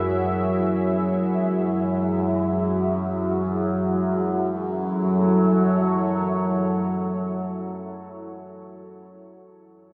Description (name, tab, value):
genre	dark ambient drone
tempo	free time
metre	none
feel	none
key	F# minor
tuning	A4 = 441 Hz
part	deep dark ambient pad	sustained chords	0.0-7.9 s	E4 to E5	-29 LUFS	equal	chorus, built-in reverb
part	overtone-sweeping drone	drone	0.0-7.5 s	F#2 to F#3	-25 LUFS	equal	chorus, built-in reverb
part	bronze singing bowl	texture	0.0-4.2 s	none	barely audible	none	none
room	wet cathedral reverb, RT60 5.5 s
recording	dreamy mix soaked in reverb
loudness	-23 LUFS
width	mono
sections	0.0-4.2 A section; 4.2-8.2 B section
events	none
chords	0.0 F#sus2; 4.2 F#m